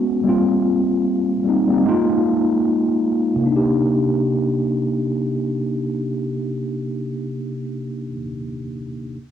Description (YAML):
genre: hip hop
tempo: 75 BPM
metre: 4/4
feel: swing 58% on 16ths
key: C minor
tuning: A4 = 440 Hz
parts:
  - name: mellow tine electric piano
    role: accompaniment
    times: 0.0-9.2 s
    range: C3 to G4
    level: -18 LUFS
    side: equal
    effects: medium stereo tremolo, low-pass filter, cassette tape
room: wet studio reverb, RT60 0.5 s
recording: home recording on cassette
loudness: -18 LUFS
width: side -9 dB against mid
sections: 0.0-3.5 A section; 3.5-6.7 B section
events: none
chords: 0.3 Eb69; 1.9 Bb7sus4/Ab; 3.5 Cm9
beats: | 0.25 1.05 1.85 2.65 | 3.45 4.25 5.05 5.85